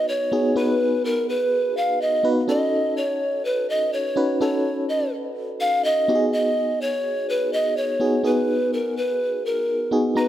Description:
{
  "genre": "pop",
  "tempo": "125 BPM",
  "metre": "4/4",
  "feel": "straight",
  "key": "unclear",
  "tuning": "A4 = 440 Hz",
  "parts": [
    { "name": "mellow hollow pan flute", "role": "melody", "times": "0.0-10.3 s", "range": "Bb4 to F5", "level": "-22 LUFS", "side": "equal", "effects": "digital delay" },
    { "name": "FM electric piano with tremolo", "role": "accompaniment", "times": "0.0-10.3 s", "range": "Cb4 to Bb5", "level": "-24 LUFS", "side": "equal", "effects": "none" }
  ],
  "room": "moderate lush hall reverb, RT60 2.4 s",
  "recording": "none",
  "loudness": "-20 LUFS",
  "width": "side -12 dB against mid",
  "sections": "0.0-10.3 A section",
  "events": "none",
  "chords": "0.0 Cb; 2.5 Gbm6; 6.1 Abm7"
}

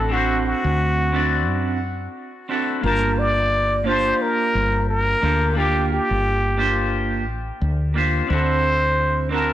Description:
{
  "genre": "sunset chillout",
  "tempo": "88 BPM",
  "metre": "4/4",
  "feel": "swing 57% on 16ths",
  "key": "G dorian",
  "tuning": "A4 = 440 Hz",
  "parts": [
    { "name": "trumpet with plunger mute", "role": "melody", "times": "0.0-9.5 s", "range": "F#4 to D5", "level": "-22 LUFS", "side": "equal", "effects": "analog delay" },
    { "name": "clean electric guitar", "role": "accompaniment", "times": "0.0-9.5 s", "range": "Bb3 to A5", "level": "-23 LUFS", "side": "right 1 dB", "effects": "auto-pan, tape echo" },
    { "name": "woody fretless electric bass", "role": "bass", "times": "0.0-9.5 s", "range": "G1 to F#2", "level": "-22 LUFS", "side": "equal", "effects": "lush chorus" }
  ],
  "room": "light reverb, small room ambience",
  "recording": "dry, gritty hardware recording",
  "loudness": "-18 LUFS",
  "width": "side -12 dB against mid",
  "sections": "0.0-9.5 A section",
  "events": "none",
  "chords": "0.0 D7; 2.8 Gm7; 8.3 D7"
}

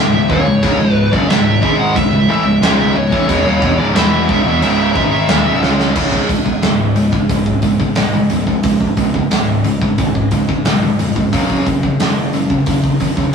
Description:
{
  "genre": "heavy metal",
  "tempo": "90 BPM",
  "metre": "4/4",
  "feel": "straight",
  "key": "C# minor",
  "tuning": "A4 = 440 Hz",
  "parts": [
    { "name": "high-gain lead guitar", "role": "melody", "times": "0.0-5.6 s", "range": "C#5 to F#5", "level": "-18 LUFS", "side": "right 1 dB", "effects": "distortion" },
    { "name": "distorted electric guitar", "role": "riff", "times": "0.0-13.3 s", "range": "C#2 to C#4", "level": "-19 LUFS", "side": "right 4 dB", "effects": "overdrive" },
    { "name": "high-gain distorted guitar", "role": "riff", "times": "0.0-13.3 s", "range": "C#2 to C#4", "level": "-17 LUFS", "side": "left 3 dB", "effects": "distortion" },
    { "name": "fuzz picked electric bass", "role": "bass", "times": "0.0-13.1 s", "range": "C#1 to C#2", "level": "-21 LUFS", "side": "equal", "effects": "overdrive" },
    { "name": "big rock drum kit", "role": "drums", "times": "0.3-13.3 s", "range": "crash cymbal, hi-hat, kick drum, snare drum", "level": "-17 LUFS", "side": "equal", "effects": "none" }
  ],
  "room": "moderate studio reverb, RT60 0.6 s",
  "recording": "rough rehearsal-room recording, small room ambience",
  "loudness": "-12 LUFS",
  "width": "side -6 dB against mid",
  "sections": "0.0-6.0 A section; 6.0-13.3 B section",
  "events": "drum fill 5.6-6.0",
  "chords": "0.0 C#m; 6.0 C#5; 11.3 F#5"
}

